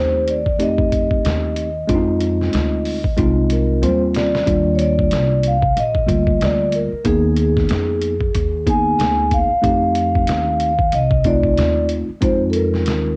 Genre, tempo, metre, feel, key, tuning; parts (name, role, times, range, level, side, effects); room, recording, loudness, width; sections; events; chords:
hip hop, jazz-hop; 93 BPM; 4/4; swing 58% on 16ths; Eb major; A4 = 440 Hz
vibraphone with soft mallets; melody; 0.0-13.2 s; Ab4 to Ab5; -22 LUFS; equal; cassette tape
mellow tine electric piano; accompaniment; 0.0-13.2 s; D3 to Ab4; -22 LUFS; equal; cassette tape
upright bass; bass; 0.0-13.2 s; Bb1 to F2; -24 LUFS; equal
trip hop sampler-style drum kit; drums; 0.3-13.0 s; hi-hat, kick drum, snare drum; -24 LUFS; equal; cassette tape
light reverb, digital ambience; home recording on cassette; -17 LUFS; mono
0.0-4.5 A section; 4.5-13.2 B section
drum fill 3.2-4.5
0.0 F7; 1.9 Ab6; 3.8 Eb69; 4.5 Ebmaj7; 7.1 Abmadd9/Eb; 9.6 F7; 12.2 Bb9sus4